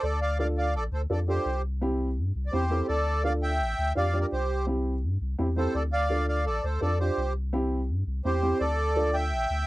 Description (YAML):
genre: latin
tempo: 168 BPM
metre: 4/4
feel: straight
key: D minor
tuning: A4 = 440 Hz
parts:
  - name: accordion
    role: melody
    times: 0.0-9.7 s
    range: G4 to G5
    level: -28 LUFS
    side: right 1 dB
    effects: light tremolo tuning
  - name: pure sine sub bass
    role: bass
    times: 0.0-9.6 s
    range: A1 to G2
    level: -28 LUFS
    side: equal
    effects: none
  - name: dark upright piano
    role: accompaniment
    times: 0.4-9.2 s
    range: C4 to A4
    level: -30 LUFS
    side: equal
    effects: none
room: little or no reverb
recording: dry, close 1970s-style studio recording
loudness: -25 LUFS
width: side -18 dB against mid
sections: 0.0-9.7 A section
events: none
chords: 0.0 Dm; 1.5 C; 2.9 Dm; 4.3 C; 5.8 Dm; 7.2 C; 8.6 Dm